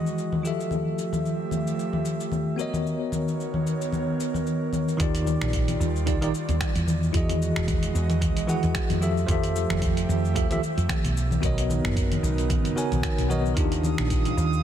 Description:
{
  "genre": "sunset chillout",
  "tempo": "112 BPM",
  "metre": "4/4",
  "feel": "swing 56% on 16ths",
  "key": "unclear",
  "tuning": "A4 = 442 Hz",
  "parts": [
    { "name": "bell-like tine electric piano", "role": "accompaniment", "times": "0.0-14.6 s", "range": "Eb3 to Ab5", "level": "-29 LUFS", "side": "moving between left 5 dB and right 6 dB", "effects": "medium stereo tremolo, auto-pan, ping-pong delay" },
    { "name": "airy breathy pad", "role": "sustained chords", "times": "0.0-14.6 s", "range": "C#3 to F5", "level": "-32 LUFS", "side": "right 1 dB", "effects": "chorus, vintage 12-bit sampler grit" },
    { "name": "dusty soul sampler-style drum kit", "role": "drums", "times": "0.1-14.6 s", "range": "congas, finger snaps, hi-hat, shaker", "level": "-29 LUFS", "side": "left 2 dB", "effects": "overdrive, soft clipping on snare" },
    { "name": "woody fretless electric bass", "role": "bass", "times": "5.0-14.6 s", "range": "E1 to F2", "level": "-26 LUFS", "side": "right 1 dB", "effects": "tube saturation" },
    { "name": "electronic kick drum", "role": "drums", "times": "5.0-14.2 s", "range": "none", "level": "-27 LUFS", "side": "right 1 dB", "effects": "none" },
    { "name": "drifting glass-harmonics texture", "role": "texture", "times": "13.8-14.6 s", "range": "Eb6", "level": "-34 LUFS", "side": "right 9 dB", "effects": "chorus, built-in reverb" }
  ],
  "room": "light reverb, digital ambience",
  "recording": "dense, heavily limited modern master",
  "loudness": "-23 LUFS",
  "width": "side -10 dB against mid",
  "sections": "0.0-5.0 A section; 5.0-14.6 B section",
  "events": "none",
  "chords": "0.4 Fmaj9; 2.6 Bmaj9; 5.0 Ebmaj9; 6.9 Emaj9; 9.0 Fmaj9; 11.2 Bmaj9; 13.6 Ebmaj9"
}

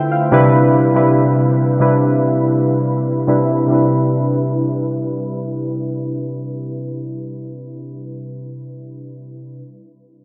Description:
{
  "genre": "R&B",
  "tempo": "71 BPM",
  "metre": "4/4",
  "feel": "straight",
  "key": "C major",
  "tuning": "A4 = 440 Hz",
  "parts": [
    { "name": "warm analog keys", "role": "accompaniment", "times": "0.0-9.6 s", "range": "C3 to G5", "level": "-18 LUFS", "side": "equal", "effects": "chorus" }
  ],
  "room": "wet huge ambient reverb, RT60 7.2 s",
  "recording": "dreamy mix soaked in reverb, low-pass filter",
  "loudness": "-16 LUFS",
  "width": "mono",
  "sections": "0.0-3.7 A section; 3.7-7.1 B section",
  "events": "filter sweep 0.0-3.7",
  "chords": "0.3 Cmaj9"
}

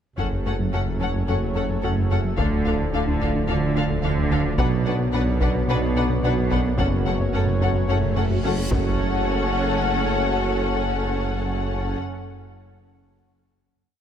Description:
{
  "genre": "cinematic, hybrid orchestral and electronic film score",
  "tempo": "109 BPM",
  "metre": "4/4",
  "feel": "straight",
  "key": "F# harmonic minor",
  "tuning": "A4 = 440 Hz",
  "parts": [
    { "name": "warm symphonic violin section", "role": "melody", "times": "0.2-12.0 s", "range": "F5 to F#5", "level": "-30 LUFS", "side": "left 7 dB", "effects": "none" },
    { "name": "warm studio violin section", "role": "second line", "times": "0.2-12.0 s", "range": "A4 to B4", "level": "-32 LUFS", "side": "left 4 dB", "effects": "none" },
    { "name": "warm symphonic viola section", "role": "accompaniment", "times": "0.2-12.0 s", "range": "C#4 to D4", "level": "-32 LUFS", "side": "right 1 dB", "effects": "none" },
    { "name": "warm French horn section", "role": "sustained chords", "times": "0.2-12.0 s", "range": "A3 to D4", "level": "-33 LUFS", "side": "left 6 dB", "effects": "none" },
    { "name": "warm analog pad", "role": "sustained chords", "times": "0.2-12.0 s", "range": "F3 to D5", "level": "-31 LUFS", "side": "equal", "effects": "chorus" },
    { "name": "warm trombone section", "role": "sustained chords", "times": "0.2-12.0 s", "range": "F#2 to F#3", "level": "-35 LUFS", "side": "right 4 dB", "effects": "none" },
    { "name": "resonant blip pluck", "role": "arpeggios", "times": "0.2-8.7 s", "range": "D3 to B4", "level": "-35 LUFS", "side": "right 2 dB", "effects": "none" },
    { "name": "rubbery square bass", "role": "riff", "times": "0.2-8.7 s", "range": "D2 to B3", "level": "-28 LUFS", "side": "left 2 dB", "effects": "none" },
    { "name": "mellow tuba", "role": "bass", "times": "0.2-12.0 s", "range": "F#1 to D2", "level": "-29 LUFS", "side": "right 4 dB", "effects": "none" },
    { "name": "saturated sub bass", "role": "bass", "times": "0.2-12.0 s", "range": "D1 to B1", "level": "-30 LUFS", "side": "equal", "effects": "none" },
    { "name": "warm symphonic cello section", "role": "bass", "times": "0.2-12.0 s", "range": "F#2 to D3", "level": "-29 LUFS", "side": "right 3 dB", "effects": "none" },
    { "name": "warm symphonic double bass section", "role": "bass", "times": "0.2-12.0 s", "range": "F#1 to D2", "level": "-30 LUFS", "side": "right 3 dB", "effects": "none" },
    { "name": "taiko ensemble", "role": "drums", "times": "0.2-9.8 s", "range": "none", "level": "-29 LUFS", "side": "left 1 dB", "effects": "none" },
    { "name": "reverse cymbal and impact", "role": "sound effects", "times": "8.4-12.0 s", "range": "none", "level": "-32 LUFS", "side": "equal", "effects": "none" }
  ],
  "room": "moderate scoring stage reverb, RT60 2.1 s",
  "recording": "none",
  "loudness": "-20 LUFS",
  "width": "side -9 dB against mid",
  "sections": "0.2-9.0 theme; 9.0-11.2 final hit",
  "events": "reverse cymbal 8.4-9.0; impact 9.0-11.2",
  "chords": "0.2 F#m; 2.4 Dm; 4.6 Bm; 6.8 F#m"
}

